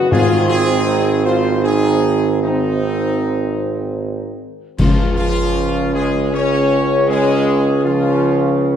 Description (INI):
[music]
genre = classical, ceremonial fanfare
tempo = 78 BPM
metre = 3/4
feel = straight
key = Db major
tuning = A4 = 440 Hz
[part]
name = warm French horn section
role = sustained chords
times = 0.0-8.8 s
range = F3 to F4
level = -21 LUFS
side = left 2 dB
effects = none
[part]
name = warm trombone section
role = sustained chords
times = 0.0-8.8 s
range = Db3 to Db4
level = -22 LUFS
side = right 1 dB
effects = none
[part]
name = clear tuba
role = bass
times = 0.0-8.8 s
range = Ab1 to Db2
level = -18 LUFS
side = right 3 dB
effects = none
[part]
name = clear trumpet section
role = melody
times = 0.1-8.8 s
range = Eb4 to Db5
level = -22 LUFS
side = equal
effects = none
[part]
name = timpani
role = percussion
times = 0.1-1.2, 4.8-5.9 s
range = Ab2 to Db3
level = -20 LUFS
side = left 3 dB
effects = none
[part]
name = clash cymbals and concert bass drum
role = percussion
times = 4.8-6.3 s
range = none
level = -22 LUFS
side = left 1 dB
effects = none
[sound]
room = wet scoring stage reverb, RT60 1.6 s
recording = dark, warm production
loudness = -14 LUFS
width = side -8 dB against mid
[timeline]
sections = 0.0-4.8 A section; 4.8-8.8 B section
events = band accent 4.8-5.6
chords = 0.1 Ab; 4.8 Db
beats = | 0.12 0.87 1.64 | 2.43 3.21 4.00 | 4.79 5.56 6.34 | 7.09 7.84 8.59